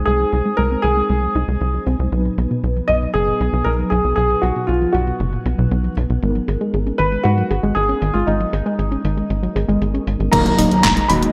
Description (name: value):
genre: italo disco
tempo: 117 BPM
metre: 4/4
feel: straight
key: unclear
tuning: A4 = 440 Hz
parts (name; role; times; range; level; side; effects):
- dark grand piano; melody; 0.0-11.1 s; Eb4 to Cb6; -22 LUFS; equal; analog chorus, shimmer reverb, digital delay
- mellow synth brass; stabs; 0.0-11.3 s; F#3 to Eb5; -27 LUFS; equal; chorus, shimmer reverb
- tight sequencer bass; bass; 0.0-11.3 s; Eb1 to Ab2; -22 LUFS; equal; none
- warbly dusty pluck; arpeggios; 0.1-11.3 s; F#2 to Ab4; -26 LUFS; equal; chorus, shimmer reverb, delay
- detuned 8-bit digital drum machine; drums; 0.1-11.3 s; crash cymbal, handclaps, hi-hat, snare drum; -26 LUFS; equal; overdrive, low-pass filter on hats, studio reverb, low-pass filter on cymbals, low-pass filter on snare, gated reverb
- electronic kick drum; drums; 10.3-10.9 s; none; -25 LUFS; equal; studio reverb
- impact; sound effects; 10.3-11.3 s; none; -29 LUFS; equal; none
room: moderate plate reverb, RT60 1.6 s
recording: bright 1980s-style digital production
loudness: -18 LUFS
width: mono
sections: 0.0-10.3 A section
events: filter sweep on synth arpeggio sound 0.0-10.3; impact 10.3-11.3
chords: 0.0 Ab; 2.1 B; 6.2 Abmadd9; 10.3 Ebm